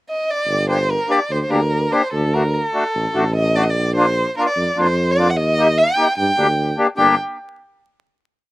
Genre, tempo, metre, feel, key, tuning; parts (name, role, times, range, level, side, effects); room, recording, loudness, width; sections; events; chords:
klezmer; 148 BPM; 4/4; straight; G minor; A4 = 444 Hz
dark violin; melody; 0.1-7.2 s; A4 to G5; -19 LUFS; right 1 dB
warm tuba; bass; 0.5-7.2 s; G1 to G2; -20 LUFS; equal
accordion; accompaniment; 0.7-7.2 s; A3 to G4; -17 LUFS; left 2 dB
little or no reverb; recorded outdoors, with no room sound, vinyl crackle; -15 LUFS; side -17 dB against mid
0.0-0.5 pickup bar; 0.5-7.0 A section; 7.0-8.5 final chord
0.5 Gm; 2.1 D; 3.8 Bb; 5.4 Eb; 6.2 Gm